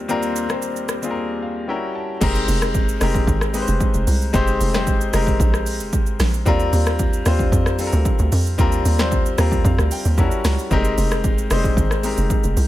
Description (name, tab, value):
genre	amapiano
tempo	113 BPM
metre	4/4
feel	straight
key	F dorian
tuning	A4 = 441 Hz
part	clear grand piano	accompaniment	0.0-12.7 s	Eb2 to Bb5	-22 LUFS	left 2 dB	low-pass filter
part	deep house drum kit	drums	0.1-12.7 s	crash cymbal, hi-hat, kick drum, rim click, shaker, snare drum	-21 LUFS	equal	none
part	hollow log drum bass	bass	2.2-12.7 s	F1 to F2	-20 LUFS	right 1 dB	none
room	little or no reverb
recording	none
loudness	-17 LUFS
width	side -14 dB against mid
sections	0.0-2.2 A section; 2.2-12.7 B section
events	break 1.2-2.2; grand piano fill 1.2-2.2, 9.1-10.7; drop 2.2-12.7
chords	0.0 Ebmaj13; 1.7 Edim7; 2.2 Fm11; 6.5 Ebmaj13; 10.2 Edim7; 10.7 Fm11